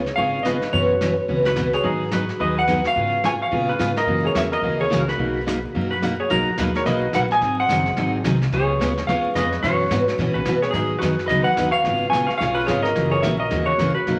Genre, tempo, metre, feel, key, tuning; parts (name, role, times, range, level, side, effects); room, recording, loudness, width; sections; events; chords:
country, western swing; 216 BPM; 4/4; swing 61% on 8ths; A4 = 440 Hz
clean lap steel guitar; melody; 0.0-14.2 s; G#4 to G#5; -25 LUFS; equal
Celtic harp; second line; 0.0-14.2 s; D#4 to D#5; -30 LUFS; equal
upright bass; bass; 0.0-14.2 s; F#1 to B2; -30 LUFS; equal
vintage brush drum kit; drums; 0.1-14.2 s; brushed snare drum, hi-hat, kick drum, snare drum; -34 LUFS; equal
picked steel-string acoustic guitar; accompaniment; 0.2-14.2 s; B2 to G#4; -26 LUFS; equal
wet large studio reverb, RT60 1.3 s; vinyl crackle; -21 LUFS; mono
0.0-6.3 A section; 6.3-14.2 A section
0.0 C#7; 0.7 F#7sus4; 1.8 G#m7; 3.0 C#7/G#; 4.1 F#7; 5.2 Bmaj7; 7.4 G#7; 8.5 C#7; 9.6 F#7sus4; 10.7 G#m7; 11.9 C#7/G#; 13.0 F#7